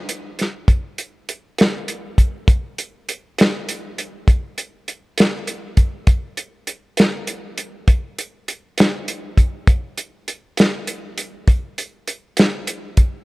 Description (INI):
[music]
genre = blues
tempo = 67 BPM (dotted quarters)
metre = 12/8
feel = straight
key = none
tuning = none
[part]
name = warm soul drum kit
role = drums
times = 0.1-13.1 s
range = hi-hat, kick drum, snare drum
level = -16 LUFS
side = equal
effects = none
[sound]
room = light reverb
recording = none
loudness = -17 LUFS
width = side -22 dB against mid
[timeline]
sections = 0.0-13.2 A section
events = none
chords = none